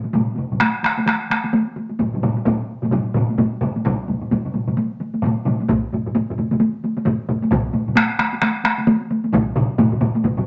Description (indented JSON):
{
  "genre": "japanese traditional, taiko drum ensemble",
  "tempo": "131 BPM",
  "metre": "4/4",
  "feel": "swing 60% on 16ths",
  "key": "none",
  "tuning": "none",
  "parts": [
    { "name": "taiko ensemble", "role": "percussion", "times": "0.0-10.4 s", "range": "none", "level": "-23 LUFS", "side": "equal", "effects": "none" },
    { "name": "taiko ensemble", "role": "percussion", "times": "0.1-10.5 s", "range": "none", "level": "-23 LUFS", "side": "equal", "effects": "none" },
    { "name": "taiko ensemble", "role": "percussion", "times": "2.0-10.5 s", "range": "none", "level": "-27 LUFS", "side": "equal", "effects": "none" },
    { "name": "taiko ensemble", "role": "percussion", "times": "3.9-10.4 s", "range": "none", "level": "-29 LUFS", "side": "equal", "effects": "none" }
  ],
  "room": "wet studio reverb, RT60 0.8 s",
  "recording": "nothing above 7.7 kHz",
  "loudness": "-20 LUFS",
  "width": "mono",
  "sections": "0.0-10.5 A section",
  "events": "none",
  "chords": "none",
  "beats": "| 0.16 0.62 1.09 1.55 | 2.01 2.47 2.94 3.40 | 3.86 4.32 4.78 5.24 | 5.69 6.15 6.61 7.07 | 7.52 7.98 8.43 8.89 | 9.34 9.80 10.25"
}